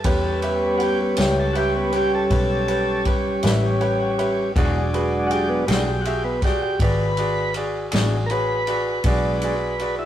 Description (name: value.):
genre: slow blues.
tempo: 53 BPM (dotted quarters).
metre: 12/8.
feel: straight.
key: unclear.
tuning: A4 = 438 Hz.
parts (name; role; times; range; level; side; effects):
bright upright piano; accompaniment; 0.0-10.1 s; F#4 to G5; -27 LUFS; right 1 dB; none.
tonewheel organ; sustained chords; 0.0-10.1 s; F#3 to B4; -22 LUFS; equal; slow rotary speaker.
vintage muted fingered electric bass; bass; 0.0-10.1 s; E1 to E2; -26 LUFS; left 1 dB; none.
vintage drum kit; drums; 0.0-10.0 s; kick drum, ride cymbal, snare drum; -26 LUFS; equal; none.
electric guitar through a small old amp; accompaniment; 1.2-8.2 s; A2 to G#4; -30 LUFS; left 3 dB; harmonic tremolo.
room: moderate stone room reverb, RT60 1.3 s.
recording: rough rehearsal-room recording, warm saturation.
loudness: -18 LUFS.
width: side -11 dB against mid.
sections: 0.0-10.1 A section.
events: tonewheel organ solo 0.0-10.1; upright piano fill 3.4-4.6.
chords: 0.0 A7; 4.6 E7.